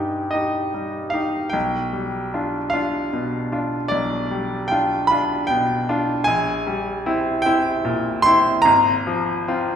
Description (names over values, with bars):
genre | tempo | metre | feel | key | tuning
classical, romantic nocturne for solo piano | 50 BPM (dotted quarters) | 12/8 | rubato | unclear | A4 = 438 Hz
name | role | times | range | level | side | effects
bright grand piano | solo | 0.0-9.8 s | Ab1 to C6 | -18 LUFS | equal | none
room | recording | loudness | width
wet recital hall reverb, RT60 1.6 s | heard from further back in the room | -18 LUFS | side -8 dB against mid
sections
0.0-9.8 A section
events
none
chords
0.0 Cm; 1.5 G7/B; 6.3 C7/Bb; 8.7 Fm/Ab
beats
0.35 | 1.55 2.73 3.93 5.12 | 6.28 7.46 8.65